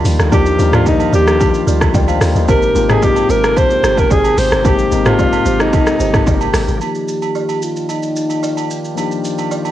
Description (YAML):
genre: amapiano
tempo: 111 BPM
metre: 4/4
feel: straight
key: Eb major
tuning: A4 = 440 Hz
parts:
  - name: bell-like tine electric piano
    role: accompaniment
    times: 0.0-9.7 s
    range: F3 to G5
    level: -20 LUFS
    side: left 9 dB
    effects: low-pass filter, cassette tape
  - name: pipe organ, cornet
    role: sustained chords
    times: 0.0-9.7 s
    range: C3 to G5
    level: -24 LUFS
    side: right 2 dB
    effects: sidechain pumping, low-pass filter, cassette tape
  - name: deep log drum bass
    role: bass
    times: 0.0-6.8 s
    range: G1 to Eb2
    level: -17 LUFS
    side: equal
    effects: transformer saturation
  - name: deep house drum kit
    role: drums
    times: 0.1-9.7 s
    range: hi-hat, kick drum, rim click, shaker, toms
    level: -17 LUFS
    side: equal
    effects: vintage 12-bit sampler grit
  - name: breathy alto saxophone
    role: melody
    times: 0.3-8.7 s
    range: Eb4 to C5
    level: -17 LUFS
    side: equal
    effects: low-pass filter, cassette tape, tape echo
  - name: buzzing marimba with medium mallets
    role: stabs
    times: 0.3-6.1 s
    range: F4 to D5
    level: -24 LUFS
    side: right 7 dB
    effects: cassette tape, tape echo
  - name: agogo bells and woodblock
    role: percussion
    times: 0.3-9.7 s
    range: none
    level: -25 LUFS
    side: right 11 dB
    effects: none
room: light reverb, small room ambience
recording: home recording on cassette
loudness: -11 LUFS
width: side -12 dB against mid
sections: 0.0-6.8 A section; 6.8-9.7 B section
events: drop 0.0-6.8; filter sweep 6.8-9.7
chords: 0.0 Ebmaj9; 2.5 Abmaj9; 6.8 Ebmaj9